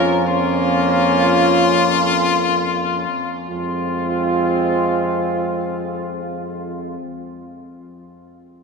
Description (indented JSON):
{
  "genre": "classical, brass quintet",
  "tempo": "free time",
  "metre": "none",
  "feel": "none",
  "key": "F minor",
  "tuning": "A4 = 440 Hz",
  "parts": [
    { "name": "mellow trumpet", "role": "melody", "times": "0.0-7.0 s", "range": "F4 to Bb4", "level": "-21 LUFS", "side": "left 7 dB", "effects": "none" },
    { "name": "mellow flugelhorn", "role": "second line", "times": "0.0-7.0 s", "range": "F4", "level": "-23 LUFS", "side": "right 5 dB", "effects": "none" },
    { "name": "clear trombone", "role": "accompaniment", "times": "0.0-7.0 s", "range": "Ab3 to Bb3", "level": "-26 LUFS", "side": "right 5 dB", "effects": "none" },
    { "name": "warm French horn", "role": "accompaniment", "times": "0.0-7.0 s", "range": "C4 to Db4", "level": "-24 LUFS", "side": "left 3 dB", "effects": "none" },
    { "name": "mellow tuba", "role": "bass", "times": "0.0-7.0 s", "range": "F2", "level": "-24 LUFS", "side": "right 1 dB", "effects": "none" }
  ],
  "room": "wet cathedral reverb, RT60 4.8 s",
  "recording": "none",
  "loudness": "-16 LUFS",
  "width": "side -4 dB against mid",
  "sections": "0.0-3.5 A section; 3.5-7.9 B section",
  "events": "slowing down 0.0-3.5",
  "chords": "0.0 Bbm/F; 3.5 Fm"
}